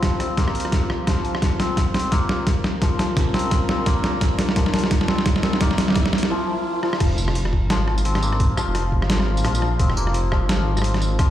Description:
half-time drum and bass; 172 BPM; 4/4; swing 58% on 16ths, half-time; F minor; A4 = 439 Hz
deep dark ambient pad; sustained chords; 0.0-11.3 s; F4 to Bb5; -32 LUFS; left 2 dB; chorus, built-in reverb, sidechain pumping
santur; arpeggios; 0.0-11.3 s; F3 to C4; -26 LUFS; left 2 dB; low-pass filter, digital delay
boom bap sampler-style drum kit; drums; 0.0-11.3 s; crash cymbal, hi-hat, rim click, snare drum, tambourine; -23 LUFS; right 1 dB; overdrive, studio reverb
electronic kick drum; drums; 0.0-11.3 s; -20 LUFS; equal; overdrive, studio reverb
riser and impact; sound effects; 0.2-8.4 s; -32 LUFS; right 1 dB
dark detuned saw bass; bass; 7.0-11.3 s; F1 to Bb1; -22 LUFS; equal
moderate lush hall reverb, RT60 1.7 s; played on a big sound system in a bare room, large studio reverb; -18 LUFS; side -12 dB against mid
0.0-7.0 A section; 7.0-11.3 B section
build-up 0.0-7.0; drum fill 0.0-6.3, 6.8; riser 0.2-7.0; break 6.3-7.0; drop 7.0-11.3; impact 7.0-8.4
0.0 F5; 7.0 Fm
| 0.03 0.38 0.72 1.07 | 1.42 1.77 2.12 2.47 | 2.82 3.17 3.52 3.86 | 4.21 4.56 4.91 5.26 | 5.61 5.96 6.30 6.65 | 7.00 7.35 7.70 8.05 | 8.40 8.75 9.10 9.45 | 9.79 10.14 10.49 10.84 | 11.19

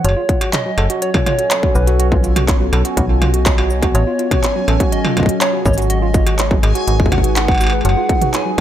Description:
IDM; 123 BPM; 4/4; straight; F# melodic minor; A4 = 443 Hz
soft struck synth lead; melody; 0.0-8.6 s; B4 to G#5; -22 LUFS; equal; chorus, tremolo, dub echo
warbly tape-like pad; sustained chords; 0.0-8.6 s; F#3 to D#5; -23 LUFS; left 1 dB; chorus, built-in reverb
tine electric piano; arpeggios; 0.0-8.6 s; F#3 to F#5; -22 LUFS; right 5 dB; fast stereo tremolo, vintage 12-bit sampler grit, tape echo
metallic FM bass; bass; 0.0-8.6 s; F#1 to B1; -16 LUFS; equal
industrial drum kit; drums; 0.0-8.6 s; cabasa, handclaps, hi-hat, struck metal, toms; -21 LUFS; right 1 dB; tape echo
backwards swelling texture; texture; 0.6-8.6 s; G#5; -32 LUFS; equal; built-in reverb
electronic kick drum; drums; 0.3-8.6 s; -17 LUFS; equal; distortion
light reverb, digital ambience; echo-heavy mix; -13 LUFS; side -11 dB against mid
0.0-8.6 A section
0.0 F#m; 2.0 B7; 3.9 F#m/A; 5.9 G#m7; 7.8 F#5
| 0.04 0.53 1.02 1.51 | 2.00 2.48 2.97 3.46 | 3.95 4.43 4.92 5.41 | 5.90 6.39 6.87 7.36 | 7.85 8.34

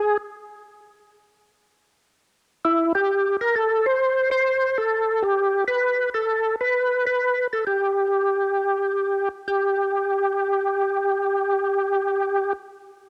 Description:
jazz; 132 BPM; 4/4; swing 68% on 8ths; G major; A4 = 442 Hz
percussive tonewheel organ; solo; 0.0-12.5 s; E4 to C5; -22 LUFS; equal; slow rotary speaker, overdrive, chorus vibrato, cassette tape
light reverb; home recording on cassette; -22 LUFS; mono
0.0-2.2 A section; 2.2-9.5 B section; 9.5-13.1 C section
| 0.35 0.81 1.26 1.72 | 2.17 2.63 3.08 3.54 | 3.99 4.45 4.90 5.36 | 5.81 6.27 6.72 7.18 | 7.63 8.09 8.54 9.00 | 9.46 9.91 10.37 10.82 | 11.28 11.73 12.19

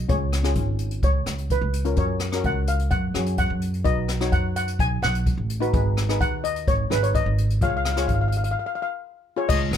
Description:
calypso; 128 BPM; 4/4; straight; A4 = 438 Hz
steel pan; melody; 0.0-9.8 s; B4 to G#5; -27 LUFS; left 2 dB
upright bass; bass; 0.0-9.8 s; G#1 to F#2; -24 LUFS; right 1 dB
steel pan; accompaniment; 0.1-9.7 s; C#4 to C#5; -29 LUFS; left 4 dB
jazz brush drum kit; drums; 0.1-9.8 s; crash cymbal, hi-hat, kick drum, rim click; -26 LUFS; equal
little or no reverb; close, detailed microphones; -21 LUFS; side -9 dB against mid
0.0-9.5 A section
break 8.6-9.5
0.1 C#; 2.0 F#add9; 3.9 B; 5.7 G#m; 7.6 C#
| 0.10 0.57 1.03 1.50 | 1.97 2.44 2.91 3.38 | 3.85 4.32 4.79 5.26 | 5.73 6.20 6.67 7.14 | 7.61 8.08 8.55 9.02 | 9.49

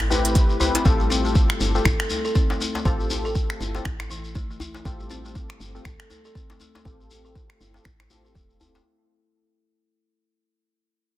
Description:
afro house; 120 BPM; 4/4; swing 58% on 16ths; A4 = 440 Hz
woody FM bass; bass; 0.0-8.8 s; E1 to A1; -29 LUFS; equal; sidechain pumping
afro-pop drum kit; drums; 0.0-8.1 s; finger snaps, hi-hat; -29 LUFS; right 1 dB; soft clipping on snare
djembe; percussion; 0.0-8.8 s; -32 LUFS; left 2 dB
shekere; percussion; 0.0-8.8 s; -32 LUFS; left 3 dB
kalimba; arpeggios; 0.1-8.7 s; E3 to A4; -30 LUFS; left 1 dB; sidechain pumping, low-pass filter, digital delay
warm analog keys; stabs; 0.1-8.8 s; C4 to B4; -28 LUFS; left 3 dB; chorus, sidechain pumping, low-pass filter, digital delay
electronic kick drum; drums; 0.4-8.5 s; -22 LUFS; equal
little or no reverb; dense, heavily limited modern master; -20 LUFS; side -15 dB against mid
0.0-8.9 A section
fade-out 0.0-8.9; filter sweep on kalimba 0.0-8.9; filter sweep on synth keys 0.0-8.9
0.0 Am7; 0.9 Fadd9
0.35 | 0.85 1.35 1.85 2.35 | 2.85 3.35 3.85 4.35 | 4.85 5.35 5.85 6.35 | 6.85 7.35 7.85 8.35

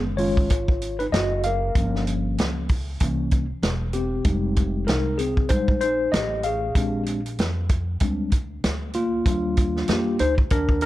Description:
hip hop, jazz-hop; 96 BPM; 4/4; swing 58% on 16ths; Eb major; A4 = 437 Hz
mellow tine electric piano; accompaniment; 0.0-10.9 s; D#3 to F5; -24 LUFS; left 1 dB; medium stereo tremolo
upright bass; bass; 0.0-10.9 s; E1 to F2; -28 LUFS; equal
vintage drum kit; drums; 0.2-10.9 s; hi-hat, kick drum, snare drum; -23 LUFS; equal
light reverb, studio ambience; dark, warm production; -21 LUFS; side -16 dB against mid
0.0-9.3 A section; 9.3-10.9 A section
tine electric piano solo 0.0-9.3, 9.3-10.9
0.0 B69 (rootless); 1.8 Gm7b5; 3.0 C7b9; 4.3 Fm9; 6.8 Bb13; 9.3 Ebmaj9
0.51 1.13 | 1.75 2.38 3.00 3.63 | 4.25 4.88 5.50 6.13 | 6.75 7.38 8.01 8.63 | 9.26 9.88 10.51

